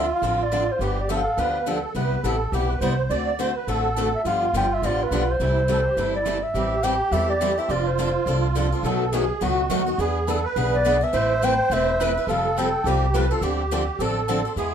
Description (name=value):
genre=acoustic string swing (jazz manouche)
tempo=209 BPM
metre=4/4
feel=swing 58% on 8ths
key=C major, A minor from 6.5 s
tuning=A4 = 439 Hz
part: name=breathy clarinet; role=melody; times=0.0-1.8, 4.2-8.4, 10.7-13.3 s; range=B4 to G5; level=-24 LUFS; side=left 1 dB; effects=none
part: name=musette accordion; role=second line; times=0.0-14.7 s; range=E4 to D5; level=-26 LUFS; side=right 6 dB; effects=none
part: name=picked steel-string acoustic guitar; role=accompaniment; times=0.0-14.7 s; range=B2 to B4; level=-30 LUFS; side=right 4 dB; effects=none
part: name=picked swing-style acoustic guitar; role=accompaniment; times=0.0-14.7 s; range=B2 to B4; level=-28 LUFS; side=left 7 dB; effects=none
part: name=upright bass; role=bass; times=0.0-14.7 s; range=E1 to E2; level=-26 LUFS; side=equal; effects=none
room=moderate studio reverb, RT60 0.7 s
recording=minimal, uncompressed stereo recording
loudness=-20 LUFS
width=side -8 dB against mid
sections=0.0-6.5 A section; 6.5-14.7 B section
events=none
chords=0.0 Dm7; 0.8 G7; 2.0 Cmaj7; 3.1 D7; 4.3 G7; 5.4 C6; 6.5 Am7; 7.7 F6; 8.8 B7; 10.0 E7; 11.1 Amadd9; 12.3 Fadd9; 13.4 Dm7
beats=0.23 0.52 | 0.81 1.09 1.38 1.67 | 1.96 2.24 2.53 2.82 | 3.11 3.39 3.68 3.97 | 4.25 4.54 4.83 5.12 | 5.40 5.69 5.98 6.26 | 6.55 6.84 7.12 7.41 | 7.70 7.98 8.27 8.56 | 8.84 9.13 9.41 9.70 | 9.99 10.27 10.56 10.85 | 11.13 11.42 11.71 11.99 | 12.28 12.57 12.85 13.14 | 13.43 13.71 14.00 14.29 | 14.57